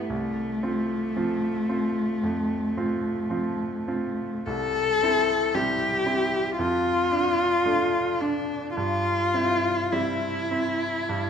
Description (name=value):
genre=classical, romantic duo for cello and grand piano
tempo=49-57 BPM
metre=4/4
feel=rubato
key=C major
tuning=A4 = 440 Hz
part: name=warm cello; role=melody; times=0.0-11.3 s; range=A3 to A4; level=-24 LUFS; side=left 2 dB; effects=none
part: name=bright grand piano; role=accompaniment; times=0.0-11.3 s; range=C2 to G4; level=-28 LUFS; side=right 2 dB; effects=none
room=moderate recital hall reverb, RT60 1.7 s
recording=minimal, uncompressed stereo recording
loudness=-23 LUFS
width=side -7 dB against mid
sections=0.0-11.3 A section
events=none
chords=0.1 F/C; 4.5 C; 6.6 Dm/F; 8.8 C/G